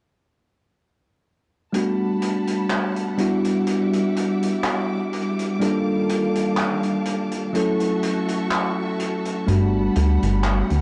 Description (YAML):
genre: vaporwave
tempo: 62 BPM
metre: 4/4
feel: swing 53% on 16ths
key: G lydian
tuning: A4 = 440 Hz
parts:
  - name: bell-like tine electric piano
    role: accompaniment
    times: 1.7-10.8 s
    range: F#3 to A4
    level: -24 LUFS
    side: equal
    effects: subtle chorus, analog delay
  - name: bright studio string section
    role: sustained chords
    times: 1.7-10.8 s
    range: Eb3 to D6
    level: -33 LUFS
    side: equal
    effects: none
  - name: raw garage drum kit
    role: drums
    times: 1.7-10.8 s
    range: handclaps, hi-hat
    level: -32 LUFS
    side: equal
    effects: vintage 12-bit sampler grit
  - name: chorused synth bass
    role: bass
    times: 9.5-10.8 s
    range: G1 to D2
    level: -21 LUFS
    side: equal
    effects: tube saturation
room: light reverb, studio ambience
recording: worn, warbling old tape, cassette tape, warbly pitch drift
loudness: -22 LUFS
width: mono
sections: 1.7-10.8 A section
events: none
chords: 1.7 Gmaj9; 3.2 Em9; 5.6 Ebmaj9#11; 7.5 F#m7; 9.5 Gmaj9